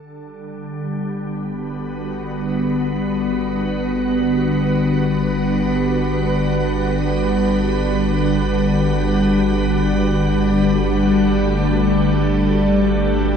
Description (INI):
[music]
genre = ambient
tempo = free time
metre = none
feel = none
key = G major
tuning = A4 = 444 Hz
[part]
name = soft additive organ-like pad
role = sustained chords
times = 0.2-13.4 s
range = D3 to B4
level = -17 LUFS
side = equal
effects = ensemble chorus, built-in reverb
[part]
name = warm sub bass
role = bass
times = 0.0-13.4 s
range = G1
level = -25 LUFS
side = equal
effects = none
[part]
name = analog drone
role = drone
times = 1.8-13.4 s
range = G3 to D4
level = -27 LUFS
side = right 1 dB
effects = chorus
[sound]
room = wet cathedral reverb, RT60 4.6 s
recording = in a vast, echoing space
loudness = -16 LUFS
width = side -7 dB against mid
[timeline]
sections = 0.0-13.4 A section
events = fade-in on sub bass 0.0-13.4; fade-in on synth drone 0.0-13.4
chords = 0.0 Gmaj9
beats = free time